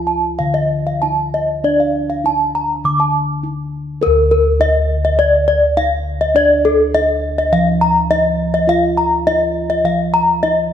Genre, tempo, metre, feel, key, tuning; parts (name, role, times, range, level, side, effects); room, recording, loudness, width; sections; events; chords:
Balinese gamelan; 103 BPM; 4/4; straight; D pelog; A4 = 440 Hz
gamelan-type bossed gongs; bass; 0.0-10.7 s; D2 to Bb4-20c; -19 LUFS; equal
gamelan-type bronze metallophone; arpeggios; 0.1-10.6 s; A4-30c to D6; -14 LUFS; left 1 dB
wet recital hall reverb, RT60 1.5 s; -13 LUFS; side -9 dB against mid
0.0-4.0 A section; 4.0-10.7 B section
break 3.1-4.0